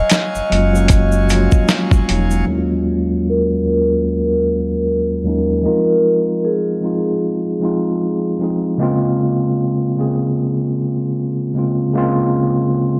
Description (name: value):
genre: lo-fi hip hop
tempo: 76 BPM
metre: 4/4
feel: swing 57% on 16ths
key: Eb dorian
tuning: A4 = 441 Hz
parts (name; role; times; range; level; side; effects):
- vibraphone with soft mallets; melody; 0.0-8.4 s; Ab4 to Eb5; -21 LUFS; equal; low-pass filter
- pipe organ, full organ; sustained chords; 0.0-2.5 s; Gb3 to Db6; -28 LUFS; equal; none
- sub bass with octave; bass; 0.0-2.4 s; Fb1 to Gb1; -19 LUFS; equal; none
- dusty soul sampler-style drum kit; drums; 0.1-2.3 s; hi-hat, kick drum, snare drum; -17 LUFS; equal; overdrive
- tube shaker; percussion; 0.1-2.5 s; none; -37 LUFS; equal; none
- mellow tine electric piano; accompaniment; 0.5-13.0 s; Eb2 to Ab4; -19 LUFS; equal; low-pass filter
room: light reverb, small room ambience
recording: none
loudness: -17 LUFS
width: mono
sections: 0.0-2.5 A section; 2.5-13.0 B section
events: filter sweep 2.5-13.0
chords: 0.0 Ebm11; 5.6 Fm7; 8.8 Bbm9